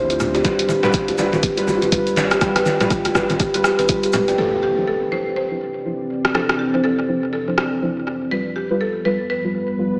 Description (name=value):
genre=afro house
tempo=122 BPM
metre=4/4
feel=swing 59% on 16ths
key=D dorian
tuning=A4 = 440 Hz
part: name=kalimba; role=arpeggios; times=0.0-4.3 s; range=F4 to G5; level=-21 LUFS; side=equal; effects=sidechain pumping, analog delay
part: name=deep mellow chord stab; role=stabs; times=0.0-10.0 s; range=F3 to C5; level=-24 LUFS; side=equal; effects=chorus, cassette tape, sidechain pumping, tape echo
part: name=warm sub bass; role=bass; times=0.0-4.3 s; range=F1 to D2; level=-35 LUFS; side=equal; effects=sidechain pumping
part: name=deep house drum kit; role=drums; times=0.1-7.7 s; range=hi-hat, rim click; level=-22 LUFS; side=equal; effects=tape echo
part: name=egg shaker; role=percussion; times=0.1-4.4 s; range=none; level=-36 LUFS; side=equal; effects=none
part: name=congas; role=percussion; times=0.2-4.3 s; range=none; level=-26 LUFS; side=equal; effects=tape echo
part: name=djembe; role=percussion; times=0.3-4.4 s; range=none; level=-26 LUFS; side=equal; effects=tape echo
part: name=electronic kick drum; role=drums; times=0.4-4.0 s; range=none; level=-23 LUFS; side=equal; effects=none
part: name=buzzing marimba with hard mallets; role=melody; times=4.4-10.0 s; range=G4 to C5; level=-25 LUFS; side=equal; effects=analog delay
part: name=dark analog pad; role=sustained chords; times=5.4-10.0 s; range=F3 to D5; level=-23 LUFS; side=equal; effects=chorus, sidechain pumping
part: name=impact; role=sound effects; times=4.4-6.3 s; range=none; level=-30 LUFS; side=equal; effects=none
room=wet echo chamber reverb, RT60 1.5 s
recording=echo-heavy mix, small speaker sound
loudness=-17 LUFS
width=side -35 dB against mid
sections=0.0-4.4 A section; 4.4-10.0 B section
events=impact 4.4-6.3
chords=0.4 G7; 4.4 Dm9; 8.3 G7